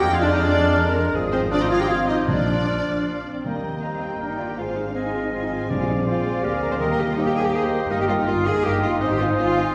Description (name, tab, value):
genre	quick classical-period movement for symphony orchestra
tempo	162 BPM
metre	3/4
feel	straight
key	Eb major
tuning	A4 = 440 Hz
part	rich studio violin section	melody	0.0-9.6 s	C5 to Ab5	-33 LUFS	equal	none
part	clear clarinet	second line	0.0-9.7 s	C4 to G5	-33 LUFS	equal	none
part	dark studio violin section	second line	0.0-9.6 s	Bb4 to G5	-36 LUFS	equal	none
part	mellow flute section	second line	0.0-9.7 s	G5 to F6	-34 LUFS	equal	none
part	warm oboe	second line	0.0-9.7 s	Eb4 to G5	-34 LUFS	equal	none
part	mellow bassoon	accompaniment	0.0-9.7 s	F3 to C4	-32 LUFS	equal	none
part	warm studio viola section	accompaniment	0.0-9.6 s	F3 to G4	-33 LUFS	equal	none
part	dark French horn section	sustained chords	0.0-9.7 s	Bb3 to Ab4	-31 LUFS	equal	none
part	warm studio cello section	bass	0.0-9.7 s	Bb3 to C5	-29 LUFS	equal	none
part	warm studio double bass section	bass	0.0-9.7 s	G1 to F2	-30 LUFS	equal	none
part	timpani	percussion	2.3-7.3 s	Bb2 to Eb3	-31 LUFS	equal	none
room	wet scoring stage reverb, RT60 1.6 s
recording	heard from further back in the room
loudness	-22 LUFS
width	mono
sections	0.0-3.5 A section; 3.5-9.7 B section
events	none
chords	0.0 Ddim/F; 1.1 Fm7/Ab; 2.3 Bb; 3.5 Eb; 4.6 Fm/Ab; 5.7 Bb9; 6.8 Eb; 7.9 Eb/G; 9.0 Ab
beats	| 0.04 0.41 0.77 | 1.14 1.51 1.89 | 2.28 2.68 3.07 | 3.46 3.84 4.21 | 4.59 4.96 5.33 | 5.70 6.07 6.44 | 6.81 7.17 7.54 | 7.91 8.28 8.65 | 9.02 9.39